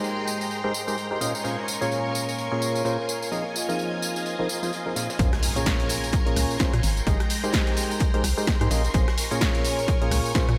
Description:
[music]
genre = piano house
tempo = 128 BPM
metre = 4/4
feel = swing 58% on 16ths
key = Bb dorian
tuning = A4 = 438 Hz
[part]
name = string machine, violins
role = sustained chords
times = 0.0-10.6 s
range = Ab3 to Db6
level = -34 LUFS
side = equal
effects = ensemble chorus, vintage 12-bit sampler grit, sidechain pumping
[part]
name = percussive organ stab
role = riff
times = 0.0-10.5 s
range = Bb2 to F5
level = -30 LUFS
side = equal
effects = lush chorus, sidechain pumping, tape echo
[part]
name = crisp fusion drum kit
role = drums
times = 0.0-10.5 s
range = hi-hat, snare drum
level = -46 LUFS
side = equal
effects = none
[part]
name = punchy analog drum machine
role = drums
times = 0.0-10.6 s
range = hi-hat, rim click, snare drum, tambourine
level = -32 LUFS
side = equal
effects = overdrive
[part]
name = deep dark ambient pad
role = texture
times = 0.0-5.2 s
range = Ab3 to Bb5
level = -38 LUFS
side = equal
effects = chorus, built-in reverb, sidechain pumping
[part]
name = organ-like FM bass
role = bass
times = 5.2-10.6 s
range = Ab1 to Bb2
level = -27 LUFS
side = equal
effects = sidechain pumping
[part]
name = electronic kick drum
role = drums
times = 5.2-10.5 s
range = none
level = -27 LUFS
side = equal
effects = overdrive
[part]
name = impact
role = sound effects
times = 5.2-7.1 s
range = none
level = -36 LUFS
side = equal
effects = none
[sound]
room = moderate lush hall reverb, RT60 2.0 s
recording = dreamy mix soaked in reverb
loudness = -25 LUFS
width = mono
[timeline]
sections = 0.0-5.2 A section; 5.2-10.6 B section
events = drop 5.2-10.6; impact 5.2-7.1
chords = 0.0 Abmaj9; 1.2 Bbm9; 3.3 Fm7; 5.2 Bbm9; 6.8 Abmaj9; 8.7 Bbm9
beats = 0.04 0.51 0.97 | 1.44 1.91 2.38 2.85 | 3.32 3.79 4.25 4.72 | 5.19 5.66 6.13 6.60 | 7.07 7.54 8.01 8.47 | 8.94 9.41 9.88 10.35

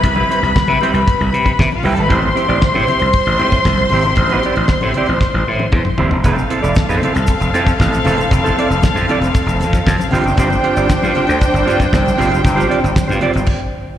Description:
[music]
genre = disco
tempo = 116 BPM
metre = 4/4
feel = straight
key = unclear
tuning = A4 = 438 Hz
[part]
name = warm studio string section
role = second line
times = 0.0-13.4 s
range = C4 to C6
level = -17 LUFS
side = left 1 dB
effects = slapback echo
[part]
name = clean electric guitar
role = accompaniment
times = 0.0-13.4 s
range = G3 to D5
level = -20 LUFS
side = right 4 dB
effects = slapback echo
[part]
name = gritty slap bass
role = bass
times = 0.0-13.4 s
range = Eb1 to C3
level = -17 LUFS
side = equal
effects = overdrive
[part]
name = damped 70s drum kit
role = drums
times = 0.0-13.6 s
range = crash cymbal, hi-hat, kick drum, snare drum, toms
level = -16 LUFS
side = equal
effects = none
[part]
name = congas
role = percussion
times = 0.0-13.3 s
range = none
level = -26 LUFS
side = left 4 dB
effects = none
[part]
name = tube shaker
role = percussion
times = 6.2-13.5 s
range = none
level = -38 LUFS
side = left 2 dB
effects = none
[sound]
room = light reverb, small room reverb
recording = live gig heard through the venue's PA, recital hall reverb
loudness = -12 LUFS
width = side -11 dB against mid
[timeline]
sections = 0.0-6.2 A section; 6.2-14.0 B section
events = drum fill 5.2-6.2; stop 13.5-14.0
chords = 0.0 Cmaj7; 2.1 Am7; 6.2 Fmaj7; 10.1 G7sus4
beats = | 0.04 0.55 1.07 1.59 | 2.11 2.62 3.14 3.66 | 4.18 4.69 5.21 5.73 | 6.25 6.76 7.28 7.80 | 8.32 8.83 9.35 9.87 | 10.38 10.90 11.42 11.93 | 12.45 12.97 13.48

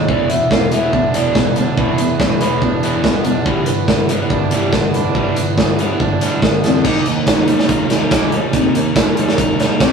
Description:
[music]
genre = indie rock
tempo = 142 BPM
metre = 4/4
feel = straight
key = unclear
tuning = A4 = 440 Hz
[part]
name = cranked stack guitar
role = riff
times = 0.0-9.9 s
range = E2 to Bb4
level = -21 LUFS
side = left 3 dB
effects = overdrive
[part]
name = crunchy overdriven guitar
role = riff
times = 0.0-9.9 s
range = E3 to G4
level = -20 LUFS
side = right 5 dB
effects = none
[part]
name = fuzz picked electric bass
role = bass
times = 0.0-9.9 s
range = E1 to E2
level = -25 LUFS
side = right 1 dB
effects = overdrive
[part]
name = mellow electric guitar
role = melody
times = 0.1-9.9 s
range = Bb3 to F5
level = -22 LUFS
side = left 1 dB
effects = none
[part]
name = big rock drum kit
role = drums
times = 0.1-9.9 s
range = crash cymbal, hi-hat, kick drum, snare drum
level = -16 LUFS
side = right 1 dB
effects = none
[sound]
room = wet stone room reverb, RT60 1.1 s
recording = rough rehearsal-room recording, tube saturation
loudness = -13 LUFS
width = side -6 dB against mid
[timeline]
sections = 0.0-6.8 A section; 6.8-9.9 B section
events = none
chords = 0.1 E5; 3.5 G6; 6.8 Eb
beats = | 0.08 0.51 0.93 1.35 | 1.78 2.20 2.62 3.04 | 3.47 3.89 4.31 4.74 | 5.16 5.58 6.00 6.43 | 6.85 7.27 7.69 8.12 | 8.54 8.96 9.38 9.80

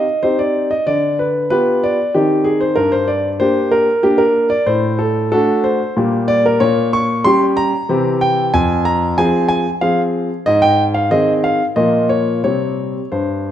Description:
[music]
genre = classical-period piano sonatina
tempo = 94 BPM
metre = 3/4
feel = rubato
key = F minor from 6.6 s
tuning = A4 = 440 Hz
[part]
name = warm grand piano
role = solo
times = 0.0-13.5 s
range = F2 to Db6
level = -13 LUFS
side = equal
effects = none
[sound]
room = moderate recital hall reverb, RT60 1.5 s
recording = none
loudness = -13 LUFS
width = side -10 dB against mid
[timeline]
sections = 0.0-13.5 A section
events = none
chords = 0.0 Cm; 0.9 G7/D; 2.2 Cm/Eb; 2.8 Gm; 4.7 D/A; 6.0 Gm/Bb; 6.6 Gdim/Bb; 7.9 C7; 8.5 Fm; 10.5 Ab; 11.8 Bbm; 12.4 C5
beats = 0.23 | 0.87 1.51 2.15 | 2.79 3.42 4.05 | 4.69 5.33 5.97 | 6.61 7.25 7.89 | 8.53 9.17 9.82 | 10.46 11.12 11.78 | 12.45 13.13

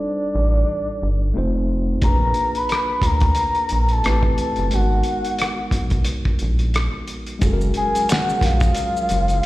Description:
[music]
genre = R&B, neo-soul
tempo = 89 BPM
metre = 4/4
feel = swing 57% on 16ths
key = F# major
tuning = A4 = 440 Hz
[part]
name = soft octave-layered synth lead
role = melody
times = 0.0-9.5 s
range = D5 to B5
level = -22 LUFS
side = left 1 dB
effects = chorus, tremolo, slapback echo
[part]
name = mellow tine electric piano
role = accompaniment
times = 0.0-9.5 s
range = G3 to C5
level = -27 LUFS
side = equal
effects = fast stereo tremolo
[part]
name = rubbery square bass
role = bass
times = 0.3-9.4 s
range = F1 to D2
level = -19 LUFS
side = equal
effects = none
[part]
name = cloth-damped thuddy drum kit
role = drums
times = 2.0-9.5 s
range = handclaps, hi-hat, kick drum, rim click, snare drum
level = -23 LUFS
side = equal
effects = none
[part]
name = hollow soft pad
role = sustained chords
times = 7.4-9.5 s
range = F#3 to A#4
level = -32 LUFS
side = equal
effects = chorus
[part]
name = maracas and finger snaps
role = percussion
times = 7.4-9.4 s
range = none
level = -33 LUFS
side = right 2 dB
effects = slapback echo
[sound]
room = little or no reverb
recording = live gig heard through the venue's PA, recital hall reverb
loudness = -17 LUFS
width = side -17 dB against mid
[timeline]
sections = 0.0-7.4 A section; 7.4-9.5 B section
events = none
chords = 0.0 F13; 1.4 F7; 2.0 A#7b9; 4.0 Am9; 4.7 G#m9; 7.4 F#maj9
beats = 0.00 0.68 1.35 | 2.02 2.70 3.37 4.05 | 4.72 5.39 6.07 6.74 | 7.42 8.09 8.77 9.44

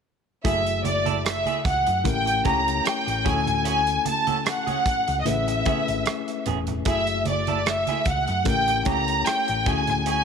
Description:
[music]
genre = lush 1970s-style soul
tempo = 75 BPM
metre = 4/4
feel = swing 54% on 16ths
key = unclear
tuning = A4 = 440 Hz
[part]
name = tine electric piano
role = accompaniment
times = 0.4-10.2 s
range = C#3 to C#5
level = -29 LUFS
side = left 14 dB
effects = overdrive, fast stereo tremolo
[part]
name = electric guitar through a small old amp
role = riff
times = 0.4-10.2 s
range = A3 to A4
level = -33 LUFS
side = right 14 dB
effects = none
[part]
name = modern studio drum kit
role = drums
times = 0.4-10.2 s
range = hi-hat, kick drum, rim click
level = -28 LUFS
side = right 2 dB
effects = none
[part]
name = warm studio violin section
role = melody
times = 0.5-10.2 s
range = D5 to Bb5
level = -23 LUFS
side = equal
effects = none
[part]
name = hollow-body short-scale fingered electric bass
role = bass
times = 0.5-10.2 s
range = E1 to F#2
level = -29 LUFS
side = equal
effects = none
[part]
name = congas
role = percussion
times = 0.5-10.1 s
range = none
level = -33 LUFS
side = right 8 dB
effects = none
[sound]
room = light reverb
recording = 1960s-style stereo with parts hard left and right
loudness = -21 LUFS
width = side -6 dB against mid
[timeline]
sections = 0.5-10.2 A section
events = none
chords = 0.5 F#m9; 2.1 A7b9; 3.3 Dmaj9#11; 5.3 Amaj9; 6.9 F#m9; 8.5 A7b9; 9.7 Dmaj9#11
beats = | 0.45 1.25 2.05 2.85 | 3.65 4.46 5.26 6.06 | 6.86 7.66 8.46 9.27 | 10.07

